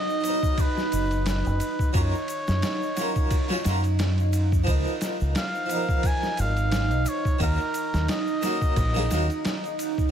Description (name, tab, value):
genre	trip hop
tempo	88 BPM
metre	4/4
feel	swing 56% on 16ths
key	Eb minor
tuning	A4 = 438 Hz
part	trumpet with cup mute	melody	0.0-9.8 s	Bb4 to Ab5	-31 LUFS	left 1 dB	tape echo
part	harpsichord	accompaniment	0.0-9.3 s	Eb3 to Db5	-32 LUFS	equal	tremolo, tape echo
part	deep dark ambient pad	sustained chords	0.0-10.1 s	Eb4 to Eb5	-30 LUFS	right 3 dB	chorus, built-in reverb
part	egg shaker and triangle	percussion	0.1-10.1 s	none	-43 LUFS	left 4 dB	none
part	boom bap sampler-style drum kit	drums	0.2-10.1 s	kick drum, ride cymbal, snare drum	-28 LUFS	equal	small room ambience
part	deep dub fingered electric bass	bass	0.9-9.3 s	F#1 to Gb2	-24 LUFS	equal	tube saturation
room	small room ambience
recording	none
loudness	-22 LUFS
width	side -9 dB against mid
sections	0.0-10.1 A section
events	none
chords	0.0 B; 1.9 Gbmaj7; 4.7 Db13 (rootless); 7.4 Ebm7